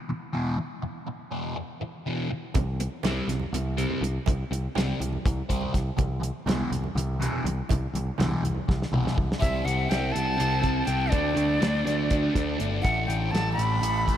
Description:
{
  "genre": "psychedelic rock",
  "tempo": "245 BPM (eighths)",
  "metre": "7/8",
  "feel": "straight",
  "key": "C major",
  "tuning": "A4 = 440 Hz",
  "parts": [
    { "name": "fuzz guitar", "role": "riff", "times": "0.1-14.2 s", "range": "E2 to D4", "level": "-29 LUFS", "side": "equal", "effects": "distortion, phaser" },
    { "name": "damped 70s drum kit", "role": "drums", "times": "2.5-14.2 s", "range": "hi-hat, kick drum, snare drum, toms", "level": "-29 LUFS", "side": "equal", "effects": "none" },
    { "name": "congas", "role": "percussion", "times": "2.5-9.2 s", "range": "none", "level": "-39 LUFS", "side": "right 8 dB", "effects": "none" },
    { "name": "picked electric bass", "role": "bass", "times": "2.6-14.2 s", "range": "G1 to D2", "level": "-29 LUFS", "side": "equal", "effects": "none" },
    { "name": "bright jazz flute", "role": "melody", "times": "9.4-14.2 s", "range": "D5 to B5", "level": "-28 LUFS", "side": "left 1 dB", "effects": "diffuse ambient delay" }
  ],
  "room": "moderate cathedral reverb, RT60 5.5 s",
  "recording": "dreamy mix soaked in reverb",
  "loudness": "-24 LUFS",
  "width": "side -10 dB against mid",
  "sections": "0.0-9.4 A section; 9.4-14.2 B section",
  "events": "drum fill 8.7-9.4",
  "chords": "0.0 E5; 2.5 C5; 6.0 E5/C; 9.4 C5; 11.1 Dsus4; 12.8 A5"
}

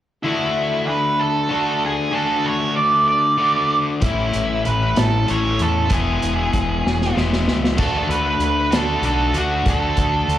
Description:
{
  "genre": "indie rock",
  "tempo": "64 BPM (dotted quarters)",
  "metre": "6/8",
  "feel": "straight",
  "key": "unclear",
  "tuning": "A4 = 440 Hz",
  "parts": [
    { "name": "octave-fuzz lead guitar", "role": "melody", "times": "0.2-10.4 s", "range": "E4 to D5", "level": "-20 LUFS", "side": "right 2 dB", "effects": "distortion, analog delay" },
    { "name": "crunchy overdriven guitar", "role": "riff", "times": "0.2-10.4 s", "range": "A2 to F#4", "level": "-22 LUFS", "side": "left 4 dB", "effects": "slapback echo" },
    { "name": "growling fingered electric bass", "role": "bass", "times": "4.0-10.4 s", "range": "E1 to E2", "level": "-23 LUFS", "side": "equal", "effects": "overdrive" },
    { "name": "vintage drum kit", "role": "drums", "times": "4.0-10.4 s", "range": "crash cymbal, hi-hat, kick drum, snare drum", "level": "-22 LUFS", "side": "right 1 dB", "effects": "none" }
  ],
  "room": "light reverb, small room ambience",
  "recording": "live gig heard through the venue's PA, club reverb",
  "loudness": "-16 LUFS",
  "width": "side -12 dB against mid",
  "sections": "0.3-7.8 A section; 7.8-10.4 B section",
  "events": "drum fill 6.9-7.8",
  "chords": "0.3 D; 4.0 A; 5.9 E; 7.8 D"
}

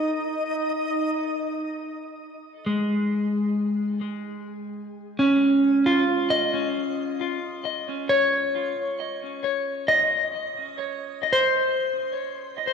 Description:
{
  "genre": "ambient",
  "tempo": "free time",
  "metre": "none",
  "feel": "none",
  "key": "unclear",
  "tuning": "A4 = 441 Hz",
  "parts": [
    { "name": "clean electric guitar", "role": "arpeggios", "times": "0.0-12.7 s", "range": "Ab3 to Eb5", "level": "-22 LUFS", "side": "equal", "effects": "ping-pong delay, shimmer reverb" }
  ],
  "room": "wet concert hall reverb, RT60 2.2 s",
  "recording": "none",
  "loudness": "-22 LUFS",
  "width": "side -6 dB against mid",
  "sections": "0.1-12.7 A section",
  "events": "none",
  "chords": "0.1 Ab5; 7.3 Dbsus2"
}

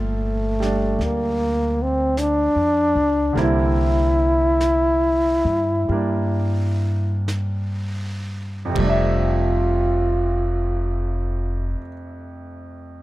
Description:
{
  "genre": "jazz ballad",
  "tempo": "39-53 BPM",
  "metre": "4/4",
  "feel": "swing 66% on 8ths",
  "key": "F major",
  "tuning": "A4 = 440 Hz",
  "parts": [
    { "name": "breathy trombone", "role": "melody", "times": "0.0-11.8 s", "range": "A3 to F4", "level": "-21 LUFS", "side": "equal", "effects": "none" },
    { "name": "bright concert grand piano", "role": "accompaniment", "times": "0.0-13.0 s", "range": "F2 to E5", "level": "-26 LUFS", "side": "right 2 dB", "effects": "none" },
    { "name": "upright bass", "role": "bass", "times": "0.0-11.7 s", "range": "F1 to G2", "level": "-23 LUFS", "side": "equal", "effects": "none" },
    { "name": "vintage brush drum kit", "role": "drums", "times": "0.6-9.5 s", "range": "brushed snare drum, hi-hat, kick drum, ride cymbal, snare drum", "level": "-37 LUFS", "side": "right 2 dB", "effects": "none" }
  ],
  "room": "little or no reverb",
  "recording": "none",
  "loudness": "-18 LUFS",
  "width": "side -17 dB against mid",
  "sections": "0.0-8.8 A section; 8.8-13.0 B section",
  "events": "slowing down 0.0-8.8",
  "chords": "0.0 Gm7; 3.4 C7; 8.8 Fmaj13"
}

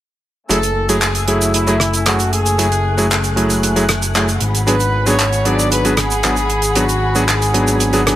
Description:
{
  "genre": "nu-disco, nu disco",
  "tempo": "115 BPM",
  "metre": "4/4",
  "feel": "straight",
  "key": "F# minor",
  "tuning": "A4 = 440 Hz",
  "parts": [
    { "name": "clear trumpet section", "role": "melody", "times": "0.5-8.1 s", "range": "E4 to D5", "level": "-20 LUFS", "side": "equal", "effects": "tape echo" },
    { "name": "clear electric grand piano", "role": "accompaniment", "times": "0.5-8.2 s", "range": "F#3 to G#4", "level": "-18 LUFS", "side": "right 1 dB", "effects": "none" },
    { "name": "warm symphonic violin section", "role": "sustained chords", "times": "0.5-8.2 s", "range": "A3 to F#6", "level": "-25 LUFS", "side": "left 1 dB", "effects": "low-pass filter" },
    { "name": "fat analog bass", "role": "bass", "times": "0.5-8.2 s", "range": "F#1 to G#1", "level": "-19 LUFS", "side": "equal", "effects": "none" },
    { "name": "damped 70s drum kit", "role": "drums", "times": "0.5-8.2 s", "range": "handclaps, hi-hat, rim click, shaker", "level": "-18 LUFS", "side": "right 1 dB", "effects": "none" }
  ],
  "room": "light reverb, studio reverb",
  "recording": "none",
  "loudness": "-13 LUFS",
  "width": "side -13 dB against mid",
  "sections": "0.5-8.2 A section",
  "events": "filter sweep on violin section 0.5-8.2",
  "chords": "0.5 F#m9; 4.4 G#m7b5"
}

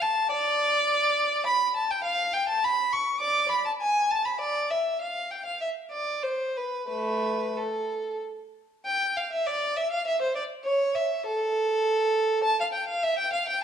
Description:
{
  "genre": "classical, baroque-style suite movement for unaccompanied violin",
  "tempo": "90-105 BPM",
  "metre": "3/4",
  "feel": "rubato",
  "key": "A minor",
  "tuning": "A4 = 440 Hz",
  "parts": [
    { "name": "clear violin", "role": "solo", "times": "0.0-13.6 s", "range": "A3 to D6", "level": "-24 LUFS", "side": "equal", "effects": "none" }
  ],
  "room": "wet recital hall reverb, RT60 1.3 s",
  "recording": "dark, warm production",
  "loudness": "-24 LUFS",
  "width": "side -8 dB against mid",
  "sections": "0.0-8.9 A section; 8.9-13.6 A section",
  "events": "none",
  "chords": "none"
}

